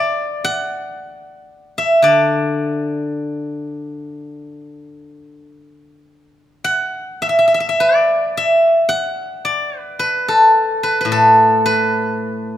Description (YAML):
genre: chinese traditional, Chinese solo plucked strings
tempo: 48-59 BPM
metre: 4/4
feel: rubato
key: D gong mode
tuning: A4 = 441 Hz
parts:
  - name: steel-string zither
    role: solo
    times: 0.0-12.6 s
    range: A2 to F#5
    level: -14 LUFS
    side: equal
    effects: none
room: moderate recital hall reverb, RT60 1.8 s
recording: minimal, uncompressed stereo recording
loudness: -14 LUFS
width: side -11 dB against mid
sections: 0.0-6.6 A section; 6.6-12.6 B section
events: none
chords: none